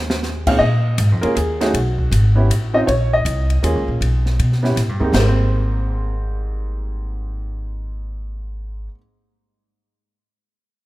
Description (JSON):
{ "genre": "jazz piano trio", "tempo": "159 BPM", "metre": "3/4", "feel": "swing 64% on 8ths", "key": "Ab major", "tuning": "A4 = 440 Hz", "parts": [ { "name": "clear baby grand piano", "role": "melody", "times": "0.0-9.0 s", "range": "Ab2 to F5", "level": "-20 LUFS", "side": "equal", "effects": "none" }, { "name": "upright bass", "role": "bass", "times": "0.0-8.9 s", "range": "Ab1 to B2", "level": "-18 LUFS", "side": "equal", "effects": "none" }, { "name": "open jazz drum kit", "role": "drums", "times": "0.1-5.3 s", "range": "china cymbal, crash cymbal, hi-hat, kick drum, ride cymbal, snare drum", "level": "-25 LUFS", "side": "equal", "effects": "none" } ], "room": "little or no reverb", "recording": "rough home demo mix", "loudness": "-16 LUFS", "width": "side -17 dB against mid", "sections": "0.6-5.1 A section; 5.1-7.4 B section", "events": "drum fill 0.0", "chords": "0.0 Abadd9; 0.6 Bbm7; 1.4 Eb7sus4; 1.7 B5; 2.5 A; 2.9 Bbsus24; 3.6 Eb9sus4; 4.0 B; 4.8 A5; 5.1 Abmaj9" }